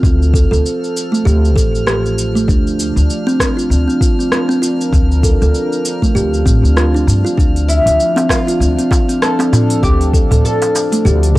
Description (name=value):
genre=organic downtempo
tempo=98 BPM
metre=4/4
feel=swing 58% on 16ths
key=D minor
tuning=A4 = 440 Hz
part: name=warm analog pad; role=sustained chords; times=0.0-11.4 s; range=F3 to D5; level=-24 LUFS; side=left 1 dB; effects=chorus, sidechain pumping
part: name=upright bass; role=bass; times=0.0-11.4 s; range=A1 to G2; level=-14 LUFS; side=equal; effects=sidechain pumping
part: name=electronic kick drum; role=drums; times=0.0-11.4 s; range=none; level=-14 LUFS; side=equal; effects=none
part: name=organic electronic drum kit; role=drums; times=0.0-11.3 s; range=hi-hat, rim click, shaker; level=-21 LUFS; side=equal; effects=none
part: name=drifting glass-harmonics texture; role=texture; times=0.0-11.4 s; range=F3 to F6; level=-25 LUFS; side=right 2 dB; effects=chorus, built-in reverb
part: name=kalimba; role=arpeggios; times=0.3-11.4 s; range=A3 to A4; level=-17 LUFS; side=right 1 dB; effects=analog delay
part: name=oud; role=melody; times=7.7-11.3 s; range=E4 to A4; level=-18 LUFS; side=left 2 dB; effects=analog delay
part: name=darbuka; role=percussion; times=8.2-11.4 s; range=none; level=-16 LUFS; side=right 1 dB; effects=none
room=studio reverb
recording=dry, gritty hardware recording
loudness=-11 LUFS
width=side -18 dB against mid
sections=0.0-11.4 A section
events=none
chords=0.0 Dm; 2.5 Bb/D; 7.4 Dm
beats=| 0.03 0.65 1.26 1.87 | 2.48 3.09 3.71 4.32 | 4.93 5.54 6.16 6.77 | 7.38 7.99 8.60 9.22 | 9.83 10.44 11.05